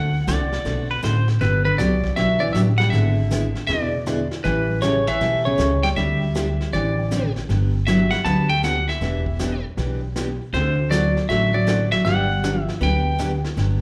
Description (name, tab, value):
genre	country, western swing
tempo	158 BPM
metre	4/4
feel	swing 65% on 8ths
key	G major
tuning	A4 = 440 Hz
part	clean lap steel guitar	melody	0.0-13.4 s	B4 to A5	-26 LUFS	equal	none
part	picked steel-string acoustic guitar	accompaniment	0.0-13.8 s	D3 to A4	-29 LUFS	equal	slapback echo
part	upright bass	bass	0.0-13.8 s	E1 to E2	-25 LUFS	equal	none
part	pedal steel guitar	second line	0.3-1.3 s	B4 to D5	-29 LUFS	equal	none
part	vintage brush drum kit	drums	0.3-13.8 s	brushed snare drum, hi-hat, kick drum, snare drum	-35 LUFS	equal	none
part	archtop guitar, miked and amplified	second line	1.4-13.4 s	B2 to B3	-27 LUFS	equal	none
room	small room reverb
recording	live gig heard through the venue's PA, club reverb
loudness	-21 LUFS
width	mono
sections	0.0-1.4 A section; 1.4-13.6 B section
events	none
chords	0.0 D7; 1.4 Gmaj7; 2.9 E7/G#; 4.5 A7; 6.0 D9sus4; 7.5 Gmaj7; 9.0 Em7; 10.5 D7; 12.1 Gmaj7